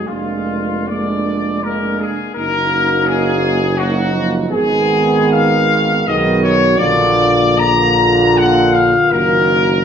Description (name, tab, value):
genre	classical, hymn-like piece for brass band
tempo	70-85 BPM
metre	3/4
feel	rubato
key	Eb minor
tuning	A4 = 444 Hz
part	mellow trumpet section	melody	0.0-9.8 s	F4 to Bb5	-16 LUFS	left 3 dB	none
part	mellow French horn section	second line	0.0-9.8 s	D4 to Ab4	-19 LUFS	right 3 dB	none
part	dark trombone section	accompaniment	0.0-9.8 s	Bb3 to Cb4	-22 LUFS	left 1 dB	none
part	warm trombone	accompaniment	0.0-9.8 s	D3 to Ab3	-21 LUFS	right 4 dB	none
part	dark tuba	bass	0.0-9.8 s	F1 to Cb2	-20 LUFS	equal	none
room	wet recital hall reverb, RT60 1.5 s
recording	recorded in a church or concert hall, nothing above 7.9 kHz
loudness	-12 LUFS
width	side -8 dB against mid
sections	0.0-9.8 A section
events	none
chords	0.1 Bb7/F; 2.4 Ebm/Gb; 4.5 Abm; 6.8 Bb; 9.1 Ebm/Gb